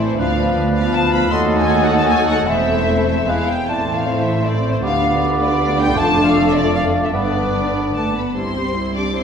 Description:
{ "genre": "classical, dramatic, fast romantic movement for symphony orchestra", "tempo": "147-161 BPM", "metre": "3/4", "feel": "rubato", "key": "C major from 6.0 s", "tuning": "A4 = 440 Hz", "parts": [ { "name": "rich symphonic violin section", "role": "melody", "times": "0.0-9.2 s", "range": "C5 to D6", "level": "-23 LUFS", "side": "left 3 dB", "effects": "none" }, { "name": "warm clarinet", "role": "second line", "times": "0.0-8.1 s", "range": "F4 to F5", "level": "-26 LUFS", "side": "left 1 dB", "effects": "none" }, { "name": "warm oboe", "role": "second line", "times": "0.0-8.1 s", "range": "A4 to D5", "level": "-27 LUFS", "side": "right 1 dB", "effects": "none" }, { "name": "warm symphonic violin section", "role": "second line", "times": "0.0-9.2 s", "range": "D4 to D5", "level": "-27 LUFS", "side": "left 3 dB", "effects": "none" }, { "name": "warm bassoon", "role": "accompaniment", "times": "0.0-8.2 s", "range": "E3 to B3", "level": "-25 LUFS", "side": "right 2 dB", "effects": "none" }, { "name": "warm symphonic viola section", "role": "accompaniment", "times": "0.0-9.2 s", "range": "D3 to G4", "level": "-24 LUFS", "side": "equal", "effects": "none" }, { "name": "mellow French horn section", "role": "sustained chords", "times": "0.0-8.2 s", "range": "A3 to A4", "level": "-23 LUFS", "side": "left 1 dB", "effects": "none" }, { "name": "warm studio cello section", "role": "bass", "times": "0.0-9.2 s", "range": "D2 to D4", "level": "-24 LUFS", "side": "right 1 dB", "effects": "none" }, { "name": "warm symphonic double bass section", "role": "bass", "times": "0.0-9.2 s", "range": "E1 to D#2", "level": "-24 LUFS", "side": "right 3 dB", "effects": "none" }, { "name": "silver concert flute", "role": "second line", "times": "0.1-7.9 s", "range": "C5 to C6", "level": "-24 LUFS", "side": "equal", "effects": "none" } ], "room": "wet scoring stage reverb, RT60 1.6 s", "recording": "heard from further back in the room", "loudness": "-15 LUFS", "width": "side -7 dB against mid", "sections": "0.0-8.4 A section", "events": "none", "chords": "0.2 Bdim/D; 1.3 D#dim; 2.5 Am/E; 3.3 E; 3.7 Am; 4.8 Bdim/D; 6.0 Dm/F; 7.1 G; 8.4 C", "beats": "| 0.19 0.57 0.95 | 1.32 1.70 2.08 | 2.48 2.88 3.27 | 3.67 4.06 4.44 | 4.83 5.21 5.59 | 5.97 6.35 6.74 | 7.14 7.55 7.96 | 8.36 8.76 9.15" }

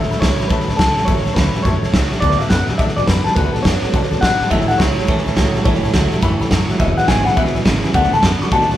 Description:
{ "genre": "rockabilly", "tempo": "210 BPM", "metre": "4/4", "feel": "swing 63% on 8ths", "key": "A major", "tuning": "A4 = 440 Hz", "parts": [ { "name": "electric guitar through a small old amp", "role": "melody", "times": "0.0-8.7 s", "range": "A4 to C#6", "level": "-20 LUFS", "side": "left 1 dB", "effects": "none" }, { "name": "picked steel-string acoustic guitar", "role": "accompaniment", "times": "0.0-8.8 s", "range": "A2 to A4", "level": "-27 LUFS", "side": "left 3 dB", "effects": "none" }, { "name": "tack piano", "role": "accompaniment", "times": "0.0-8.8 s", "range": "B4 to B5", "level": "-29 LUFS", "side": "left 3 dB", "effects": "none" }, { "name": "upright bass", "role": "bass", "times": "0.0-8.7 s", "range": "E1 to B2", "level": "-21 LUFS", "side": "equal", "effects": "none" }, { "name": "raw garage drum kit", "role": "drums", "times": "0.0-8.7 s", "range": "hi-hat, kick drum, snare drum", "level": "-17 LUFS", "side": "equal", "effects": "none" }, { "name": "twangy electric guitar", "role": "riff", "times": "4.5-8.8 s", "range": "E2 to B3", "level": "-22 LUFS", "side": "right 4 dB", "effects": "none" } ], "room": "moderate large studio reverb, RT60 1.0 s", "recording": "band playing live in one room", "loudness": "-13 LUFS", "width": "side -12 dB against mid", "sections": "0.0-8.8 A section", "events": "none", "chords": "0.0 A6; 2.2 D6; 4.5 A6; 6.8 E6; 7.9 D6", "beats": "0.22 0.51 0.79 | 1.08 1.36 1.65 1.94 | 2.22 2.51 2.79 3.08 | 3.37 3.65 3.94 4.22 | 4.51 4.80 5.08 5.37 | 5.65 5.94 6.23 6.51 | 6.80 7.08 7.37 7.66 | 7.94 8.23 8.51" }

